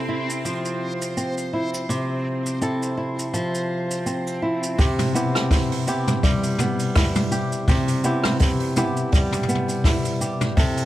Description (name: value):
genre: folktronica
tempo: 83 BPM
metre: 4/4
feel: swing 56% on 16ths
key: C major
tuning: A4 = 441 Hz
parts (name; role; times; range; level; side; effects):
- flamenco guitar; arpeggios; 0.0-10.9 s; C3 to A4; -23 LUFS; equal; digital delay
- backwards swelling texture; texture; 0.0-4.8 s; C4 to C6; -34 LUFS; equal; built-in reverb
- jazz brush drum kit; drums; 0.3-10.9 s; hi-hat, rim click, shaker, toms; -26 LUFS; left 1 dB; none
- kick drum; drums; 4.8-10.7 s; none; -20 LUFS; equal; none
room: light reverb, small room ambience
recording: vinyl crackle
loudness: -20 LUFS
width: side -14 dB against mid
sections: 0.0-4.8 A section; 4.8-10.9 B section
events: none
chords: 0.0 Fmaj7/C; 4.8 Cmaj7